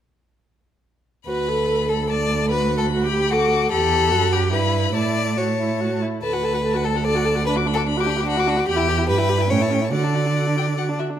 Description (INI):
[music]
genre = quick classical-period movement for string quartet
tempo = 145 BPM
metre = 3/4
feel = rubato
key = D major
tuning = A4 = 440 Hz
[part]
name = rich violin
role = melody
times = 1.3-11.1 s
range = E5 to D6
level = -28 LUFS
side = left 11 dB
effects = none
[part]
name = clear violin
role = second line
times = 1.3-11.0 s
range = F#4 to D5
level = -23 LUFS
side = left 4 dB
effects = none
[part]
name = warm viola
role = accompaniment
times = 1.3-11.2 s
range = C#4 to A4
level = -24 LUFS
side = right 2 dB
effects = none
[part]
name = rich cello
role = bass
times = 1.3-11.0 s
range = D2 to D3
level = -23 LUFS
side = right 4 dB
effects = none
[sound]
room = moderate recital hall reverb, RT60 1.3 s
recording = none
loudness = -18 LUFS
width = side -10 dB against mid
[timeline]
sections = 1.3-11.2 A section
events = none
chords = 1.3 D; 2.5 Bm/D; 3.7 Em; 4.5 Em/G; 4.9 A; 6.2 D; 7.5 Bm/D; 8.7 Em; 9.1 Em/G; 9.5 A7; 9.9 D